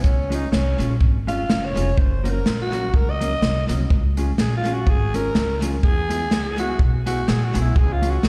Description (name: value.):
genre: ska.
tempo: 124 BPM.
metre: 4/4.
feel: swing 57% on 8ths.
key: Db major.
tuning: A4 = 440 Hz.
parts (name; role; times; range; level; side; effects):
breathy alto saxophone; melody; 0.0-8.3 s; Db4 to Eb5; -28 LUFS; equal; tape echo.
upright bass; bass; 0.0-8.3 s; F1 to E2; -25 LUFS; equal; none.
swinging big-band drum kit; drums; 0.0-8.3 s; hi-hat, kick drum, snare drum; -23 LUFS; equal; tape echo.
mellow electric guitar; accompaniment; 0.3-8.2 s; Gb3 to Ab4; -31 LUFS; equal; tape echo.
room: light reverb.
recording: live gig heard through the venue's PA, club reverb.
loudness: -21 LUFS.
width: mono.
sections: 0.0-8.3 A section.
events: alto saxophone solo 0.0-8.3.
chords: 0.0 Db; 2.0 Gb; 3.9 Db; 5.8 E; 7.8 Db.